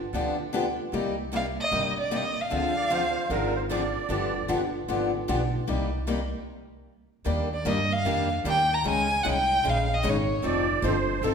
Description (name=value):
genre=acoustic string swing (jazz manouche)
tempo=151 BPM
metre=4/4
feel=swing 63% on 8ths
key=C minor, Eb major from 7.3 s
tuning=A4 = 440 Hz
part: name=picked steel-string acoustic guitar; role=accompaniment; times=0.1-11.3 s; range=C3 to A4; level=-30 LUFS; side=left 4 dB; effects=none
part: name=picked steel-string acoustic guitar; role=accompaniment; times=0.1-11.3 s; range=C3 to A4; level=-33 LUFS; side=right 4 dB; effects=none
part: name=upright bass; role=bass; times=0.1-11.3 s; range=F1 to G2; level=-31 LUFS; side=equal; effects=none
part: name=warm violin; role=melody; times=1.4-3.6, 7.5-10.4 s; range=Db5 to Bb5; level=-26 LUFS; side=equal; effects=none
part: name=musette accordion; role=second line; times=2.8-4.5, 10.4-11.3 s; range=A4 to D5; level=-30 LUFS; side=right 6 dB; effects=none
room=wet recital hall reverb, RT60 1.5 s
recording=recorded in a church or concert hall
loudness=-24 LUFS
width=side -6 dB against mid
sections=0.0-7.3 A section; 7.3-11.3 B section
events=stop 6.5-7.3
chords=0.0 G7; 0.9 Cm7; 2.5 Dm7b5; 4.1 G7; 5.7 Cm7; 7.3 Ebmaj7; 8.9 Dbsus2; 10.4 F7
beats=0.14 0.53 | 0.93 1.32 1.72 2.12 | 2.51 2.91 3.30 3.70 | 4.09 4.49 4.89 5.28 | 5.68 6.08 6.47 6.87 | 7.27 7.66 8.06 8.46 | 8.85 9.25 9.65 10.04 | 10.44 10.84 11.23